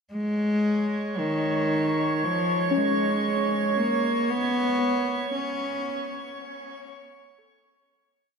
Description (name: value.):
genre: ambient.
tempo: 58 BPM.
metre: 4/4.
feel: straight.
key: unclear.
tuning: A4 = 441 Hz.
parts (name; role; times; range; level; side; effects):
rich cello; melody; 0.1-6.3 s; Eb3 to C#4; -25 LUFS; equal; ping-pong delay.
drifting glass-harmonics texture; texture; 0.8-8.4 s; Db5 to Db6; -28 LUFS; right 2 dB; chorus, built-in reverb.
soft round pluck; arpeggios; 2.7-8.4 s; Cb4 to C#6; -32 LUFS; left 5 dB; none.
room: wet huge ambient reverb, RT60 7.3 s.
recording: none.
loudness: -23 LUFS.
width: side -5 dB against mid.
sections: 0.1-8.4 A section.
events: fade-out 4.3-8.4.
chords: 0.1 N.C.; 4.3 A.